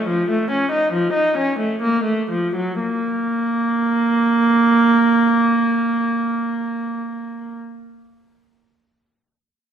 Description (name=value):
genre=classical, baroque-style suite movement for unaccompanied viola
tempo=60-75 BPM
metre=4/4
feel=rubato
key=unclear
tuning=A4 = 440 Hz
part: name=warm viola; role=solo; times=0.0-7.5 s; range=F3 to Eb4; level=-17 LUFS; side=right 1 dB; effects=none
room=moderate recital hall reverb, RT60 1.7 s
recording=heard from further back in the room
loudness=-16 LUFS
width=side -8 dB against mid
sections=0.0-2.8 A section; 2.8-6.8 B section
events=slowing down 0.0-2.8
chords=none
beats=0.09 0.91 1.80 | 2.79 3.79 4.78 5.77